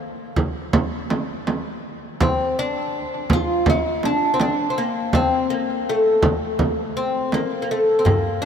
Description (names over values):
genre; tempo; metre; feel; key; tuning
Arabic maqam ensemble; 82 BPM; 4/4; straight; unclear; A4 = 440 Hz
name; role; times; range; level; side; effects
oud; melody; 0.0-8.5 s; A3 to F4; -20 LUFS; left 1 dB; analog delay
frame drum; percussion; 0.4-8.2 s; none; -23 LUFS; right 2 dB; none
darbuka; percussion; 8.1-8.2 s; none; -20 LUFS; left 2 dB; none
room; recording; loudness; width
moderate huge ambient reverb, RT60 5.0 s; dreamy mix soaked in reverb; -18 LUFS; side -7 dB against mid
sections
0.0-8.5 A section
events
none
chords
none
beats
0.00 0.74 1.47 | 2.20 2.93 3.67 4.40 | 5.13 5.86 6.59 7.33 | 8.06